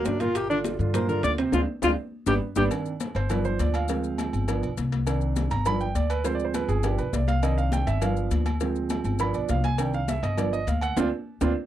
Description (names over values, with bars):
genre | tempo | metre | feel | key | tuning
Afro-Cuban jazz | 204 BPM | 4/4 | straight | C harmonic minor | A4 = 441 Hz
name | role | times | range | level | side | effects
breathy alto saxophone | melody | 0.0-2.6 s | D4 to D5 | -25 LUFS | left 3 dB | none
warm grand piano | accompaniment | 0.0-11.5 s | A#2 to B5 | -28 LUFS | right 6 dB | none
upright bass | bass | 0.0-11.5 s | G1 to G2 | -27 LUFS | left 1 dB | none
bongos and cowbell | percussion | 0.1-11.5 s | none | -36 LUFS | left 10 dB | none
congas | percussion | 0.1-11.5 s | none | -34 LUFS | left 4 dB | none
maracas | percussion | 0.1-11.5 s | none | -43 LUFS | left 25 dB | none
timbales and agogo bells | percussion | 0.1-11.5 s | none | -37 LUFS | right 5 dB | none
room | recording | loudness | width
little or no reverb | dry, close 1970s-style studio recording | -23 LUFS | side -12 dB against mid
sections
0.0-2.7 A section; 2.7-11.7 A section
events
alto saxophone solo 0.0-2.7; drum fill 1.5-2.7; band accent 1.5-2.7, 11.0-11.7; grand piano solo 2.7-11.7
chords
0.4 Gm7; 1.5 D7(b5, no3); 2.1 G; 2.7 Cmadd9; 3.3 G7; 3.9 Dm7b5; 4.5 G7; 5.1 Cmadd9; 5.7 G7; 6.2 Dm7b5; 6.8 G7; 7.4 Cmadd9; 8.0 G7; 8.6 Dm7b5; 9.2 G7; 9.8 Cmadd9; 10.4 G7; 11.0 Dm7